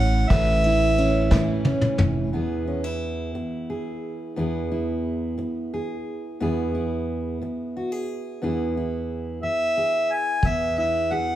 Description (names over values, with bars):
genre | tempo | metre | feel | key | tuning
acoustic folk duo or small band | 59 BPM (dotted quarters) | 6/8 | straight | E major | A4 = 439 Hz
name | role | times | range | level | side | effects
mellow harmonica | melody | 0.0-1.7, 9.4-11.4 s | E5 to G#5 | -22 LUFS | equal | none
fingerpicked steel-string acoustic guitar | accompaniment | 0.0-11.4 s | E2 to B4 | -26 LUFS | right 1 dB | none
upright bass | bass | 0.0-2.3 s | F1 to A2 | -22 LUFS | equal | none
vintage brush drum kit | drums | 0.3-2.1, 10.4-11.3 s | hi-hat, kick drum, ride cymbal, snare drum, toms | -23 LUFS | equal | none
room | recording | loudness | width
moderate large studio reverb, RT60 1.1 s | heard from further back in the room | -22 LUFS | side -13 dB against mid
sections
0.0-2.3 A section; 2.3-10.4 B section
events
drum fill 1.3-2.3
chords
0.0 Aadd9; 2.3 E